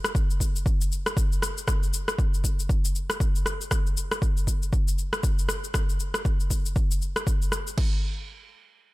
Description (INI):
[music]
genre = house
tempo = 118 BPM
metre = 4/4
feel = swing 58% on 16ths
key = none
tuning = none
[part]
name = electronic rim click and shaker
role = drums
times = 0.0-7.8 s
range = none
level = -30 LUFS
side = left 1 dB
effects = none
[part]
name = deep house drum kit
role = drums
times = 0.1-7.9 s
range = crash cymbal, kick drum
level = -24 LUFS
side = equal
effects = none
[sound]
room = little or no reverb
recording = none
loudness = -23 LUFS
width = side -19 dB against mid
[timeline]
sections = 0.0-7.8 A section; 7.8-8.9 B section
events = none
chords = none